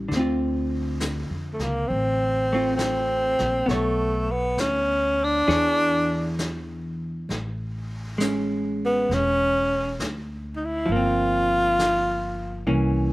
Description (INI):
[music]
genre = jazz ballad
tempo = 67 BPM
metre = 4/4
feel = swing 69% on 8ths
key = unclear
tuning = A4 = 440 Hz
[part]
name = vintage hollow-body jazz guitar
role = accompaniment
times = 0.0-13.1 s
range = D3 to C#5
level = -27 LUFS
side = equal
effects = none
[part]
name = upright bass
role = bass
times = 0.0-13.1 s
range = E1 to F2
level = -29 LUFS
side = equal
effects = none
[part]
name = vintage brush drum kit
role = drums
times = 0.1-13.1 s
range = brushed snare drum, hi-hat, snare drum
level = -34 LUFS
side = equal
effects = none
[part]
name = breathy tenor saxophone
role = melody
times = 1.5-12.7 s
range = A3 to F4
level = -22 LUFS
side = equal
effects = slapback echo
[sound]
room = little or no reverb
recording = none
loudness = -21 LUFS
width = side -19 dB against mid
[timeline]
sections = 0.0-13.1 A section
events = none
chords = 0.1 Dm7; 3.7 Bm9; 5.5 E6; 7.3 Amaj7; 10.9 Gm7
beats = | 0.11 1.00 1.90 2.79 | 3.69 4.58 5.48 6.38 | 7.28 8.18 9.08 9.98 | 10.87 11.77 12.66